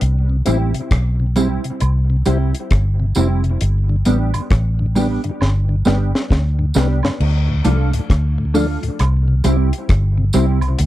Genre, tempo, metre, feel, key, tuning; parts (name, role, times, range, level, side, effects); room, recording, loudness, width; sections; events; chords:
roots reggae; 67 BPM; 4/4; swing 63% on 16ths; C major; A4 = 440 Hz
vintage muted fingered electric bass; bass; 0.0-10.9 s; F1 to D2; -16 LUFS; equal
deep reggae drum kit; drums; 0.0-10.9 s; crash cymbal, hi-hat, kick drum, rim click, snare drum; -19 LUFS; equal
mellow tonewheel organ; accompaniment; 0.3-10.7 s; D2 to E4; -24 LUFS; left 3 dB; slow rotary speaker, tape echo
mellow electric guitar; accompaniment; 0.5-10.6 s; G3 to A4; -21 LUFS; right 4 dB; analog chorus, tape echo
tambourine and woodblock; percussion; 0.5-10.8 s; -29 LUFS; right 6 dB
little or no reverb; dry, close 1970s-style studio recording; -15 LUFS; side -14 dB against mid
0.0-7.2 A section; 7.2-10.9 B section
drum fill 5.4-7.2
0.0 C; 3.6 G; 7.2 Dm; 9.0 C